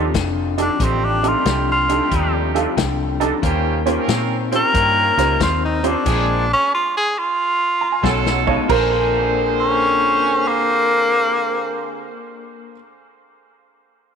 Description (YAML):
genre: electric blues shuffle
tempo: 91 BPM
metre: 4/4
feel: swing 66% on 8ths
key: Bb mixolydian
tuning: A4 = 440 Hz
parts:
  - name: honky-tonk upright piano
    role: accompaniment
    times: 0.0-12.7 s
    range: Db4 to Bb5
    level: -25 LUFS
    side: right 12 dB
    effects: none
  - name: electric guitar through a small old amp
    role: riff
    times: 0.0-12.8 s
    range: F2 to C5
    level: -24 LUFS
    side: left 12 dB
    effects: harmonic tremolo
  - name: bright horn section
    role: stabs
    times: 0.0-12.1 s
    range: D3 to C5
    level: -25 LUFS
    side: right 10 dB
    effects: tape echo
  - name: vintage muted fingered electric bass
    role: bass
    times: 0.0-12.7 s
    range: F1 to Bb2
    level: -23 LUFS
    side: equal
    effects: none
  - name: warm soul drum kit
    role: drums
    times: 0.1-8.9 s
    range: crash cymbal, hi-hat, kick drum, snare drum, toms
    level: -24 LUFS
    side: left 3 dB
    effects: none
  - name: bright tenor saxophone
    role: melody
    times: 0.6-12.1 s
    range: Bb3 to Bb4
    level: -18 LUFS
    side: equal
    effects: none
  - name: clear upright piano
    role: second line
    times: 8.7-12.7 s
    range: Bb4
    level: -24 LUFS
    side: right 4 dB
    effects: none
room: moderate echo chamber reverb, RT60 2.2 s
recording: 1960s-style stereo with parts hard left and right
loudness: -15 LUFS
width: side -7 dB against mid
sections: 0.0-8.7 A section; 8.7-11.3 B section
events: honky-tonk piano fill 2.1-3.4, 7.4-8.7; drum fill 8.0-8.7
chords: 0.0 F13; 3.4 Eb13; 6.1 Bb9; 8.0 B9; 8.7 Bb9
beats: 0.14 | 0.80 1.46 2.11 2.77 | 3.43 4.09 4.74 5.40 | 6.06 6.72 7.37 8.03 | 8.69 9.35 10.01 10.66